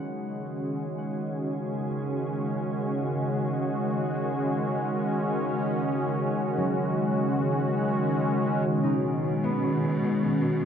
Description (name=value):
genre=ambient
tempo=free time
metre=none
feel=none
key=unclear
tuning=A4 = 440 Hz
part: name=warm analog pad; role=sustained chords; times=0.0-10.7 s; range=Eb3 to Gb4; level=-26 LUFS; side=equal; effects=chorus
part: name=concert harp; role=arpeggios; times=0.0-10.7 s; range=Gb3 to Gb5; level=-36 LUFS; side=right 1 dB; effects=tape echo
part: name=organ-like drone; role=drone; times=0.0-10.7 s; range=Db3 to Ab3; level=-32 LUFS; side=right 1 dB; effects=ensemble chorus, built-in reverb
part: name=clear studio cello section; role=bass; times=8.7-10.7 s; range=Cb3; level=-34 LUFS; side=left 1 dB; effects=none
room=wet cathedral reverb, RT60 5.9 s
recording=cassette tape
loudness=-25 LUFS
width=side -8 dB against mid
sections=0.0-8.7 A section; 8.7-10.7 A section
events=fade-in on synth drone 0.0-8.7; filter sweep on analog synth pad 8.7-10.7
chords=0.0 Cbadd9; 2.2 Gbsus2; 8.7 Cbadd9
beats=free time